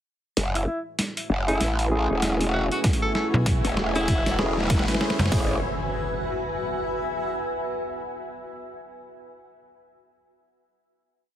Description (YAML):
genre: glitch hop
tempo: 97 BPM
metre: 4/4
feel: swing 60% on 16ths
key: F# minor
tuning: A4 = 440 Hz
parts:
  - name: dark analog pad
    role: sustained chords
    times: 1.1-5.6 s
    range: A3 to C#6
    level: -35 LUFS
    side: right 2 dB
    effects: none
  - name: growl bass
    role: bass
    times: 0.4-5.6 s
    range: E1 to A1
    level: -25 LUFS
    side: equal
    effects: chorus
  - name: boom bap sampler-style drum kit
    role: drums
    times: 0.4-5.4 s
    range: hi-hat, snare drum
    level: -28 LUFS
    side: equal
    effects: overdrive
  - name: riser and impact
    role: sound effects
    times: 2.9-7.8 s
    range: none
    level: -35 LUFS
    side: right 1 dB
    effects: none
  - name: granular cloud pad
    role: texture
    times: 1.8-7.8 s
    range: F#4 to G#5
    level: -31 LUFS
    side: left 1 dB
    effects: built-in reverb, sidechain pumping
  - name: edgy tenor saxophone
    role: melody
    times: 0.6-4.4 s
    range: E4 to A4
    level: -31 LUFS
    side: equal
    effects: low-pass filter, ping-pong delay
  - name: barky tine electric piano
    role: stabs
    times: 1.5-5.6 s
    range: A3 to B4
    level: -30 LUFS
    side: equal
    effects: sidechain pumping, low-pass filter, ping-pong delay
  - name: dubstep drum kit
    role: drums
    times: 2.8-5.5 s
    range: hi-hat, kick drum, snare drum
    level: -24 LUFS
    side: equal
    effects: none
  - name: slap-like FM bass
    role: bass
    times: 3.3-5.3 s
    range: F#1 to B1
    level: -22 LUFS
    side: equal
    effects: tube saturation
room: moderate small room reverb, RT60 0.5 s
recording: heavily compressed radio sound, multiband compression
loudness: -22 LUFS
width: side -11 dB against mid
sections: 0.4-5.3 build; 5.3-7.8 final chord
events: build-up 0.4-5.3; drum fill 0.4-5.3; riser 2.9-5.3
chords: 0.4 F#m7